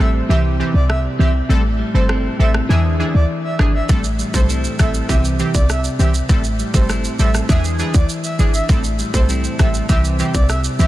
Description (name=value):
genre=dancehall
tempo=100 BPM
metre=4/4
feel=straight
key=A minor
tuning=A4 = 436 Hz
part: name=breathy flute-like synth lead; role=melody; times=0.0-10.9 s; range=C5 to E5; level=-26 LUFS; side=right 1 dB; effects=chorus, tremolo, diffuse ambient delay
part: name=synth brass stab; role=accompaniment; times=0.0-10.9 s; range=E3 to A4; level=-23 LUFS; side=right 2 dB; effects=chorus
part: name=clean electric guitar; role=arpeggios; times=0.0-10.9 s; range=A2 to E4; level=-24 LUFS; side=left 1 dB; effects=diffuse ambient delay
part: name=short 808-style bass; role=bass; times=0.0-10.9 s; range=G1 to E2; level=-17 LUFS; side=equal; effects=none
part: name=island pop drum kit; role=drums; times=0.9-10.9 s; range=kick drum, rim click, shaker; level=-20 LUFS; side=equal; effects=none
room=light reverb, digital ambience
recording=none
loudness=-14 LUFS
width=side -15 dB against mid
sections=0.0-10.9 A section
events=break 0.0-3.9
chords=0.3 C; 1.5 Am7; 2.7 E7; 3.9 Am7; 5.1 C; 6.3 Am7; 7.5 E7; 8.7 Am7; 9.9 C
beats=0.29 0.89 | 1.49 2.09 2.69 3.29 | 3.89 4.49 5.09 5.69 | 6.29 6.89 7.49 8.09 | 8.69 9.29 9.89 10.49